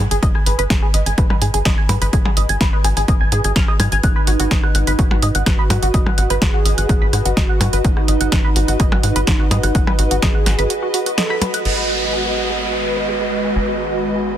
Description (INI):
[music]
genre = melodic techno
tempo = 126 BPM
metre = 4/4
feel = straight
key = unclear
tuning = A4 = 439 Hz
[part]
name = tight sequencer bass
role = bass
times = 0.0-14.4 s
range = G#1 to G#2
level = -20 LUFS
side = equal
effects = sidechain pumping
[part]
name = granular cloud pad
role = texture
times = 0.2-14.4 s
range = F#4 to D#5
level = -25 LUFS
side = equal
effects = built-in reverb, sidechain pumping
[part]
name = tight sequenced synth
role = arpeggios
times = 0.1-14.3 s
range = F#4 to E#6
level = -23 LUFS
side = equal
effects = chorus, phaser, vintage 12-bit sampler grit, sidechain pumping, digital delay
[part]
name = techno drum kit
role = drums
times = 0.1-11.8 s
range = crash cymbal, hi-hat, percussion blips, rim click, snare drum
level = -22 LUFS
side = right 1 dB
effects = none
[part]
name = electronic kick drum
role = drums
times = 0.2-10.3 s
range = none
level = -17 LUFS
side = equal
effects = overdrive
[part]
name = mellow synth brass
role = melody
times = 4.0-11.6 s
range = D#4 to A4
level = -25 LUFS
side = right 2 dB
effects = chorus, sidechain pumping, digital delay
[part]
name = lush unison pad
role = sustained chords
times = 11.7-14.4 s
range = D#3 to B3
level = -25 LUFS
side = equal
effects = chorus, sidechain pumping
[part]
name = downlifter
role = sound effects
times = 11.7-14.4 s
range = none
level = -23 LUFS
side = equal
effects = none
[sound]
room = light reverb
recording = dense, heavily limited modern master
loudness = -14 LUFS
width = side -11 dB against mid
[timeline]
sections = 0.0-11.7 A section; 11.7-14.4 B section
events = fade-in on ambient pad 0.0-11.7; break 10.7-11.7; band accent 11.2; filter sweep on synth arpeggio sound 11.7-14.4; filter sweep on analog synth pad 11.7-14.4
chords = 0.0 G#m; 4.0 B/G#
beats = | 0.23 0.70 1.18 1.65 | 2.13 2.61 3.08 3.56 | 4.04 4.51 4.99 5.46 | 5.94 6.42 6.89 7.37 | 7.84 8.32 8.80 9.27 | 9.75 10.22 10.70 11.18 | 11.65 12.13 12.61 13.08 | 13.56 14.04